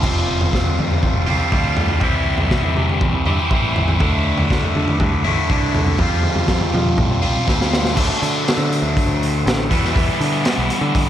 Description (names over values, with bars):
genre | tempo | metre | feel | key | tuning
psychedelic rock | 121 BPM | 4/4 | straight | unclear | A4 = 439 Hz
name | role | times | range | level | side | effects
cranked stack guitar | riff | 0.0-11.1 s | C3 to F4 | -19 LUFS | equal | overdrive, phaser
picked electric bass | bass | 0.0-11.1 s | F1 to F3 | -22 LUFS | equal | none
crunchy breakbeat drum kit | drums | 0.0-11.1 s | crash cymbal, hi-hat, kick drum, snare drum, toms | -19 LUFS | equal | none
room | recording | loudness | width
small room ambience | none | -15 LUFS | side -11 dB against mid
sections
0.0-8.0 A section; 8.0-11.1 B section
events
drum fill 7.5-8.0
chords
0.0 Fsus2; 2.0 C; 4.0 Dsus2; 6.0 Fsus2; 8.0 D; 9.7 Em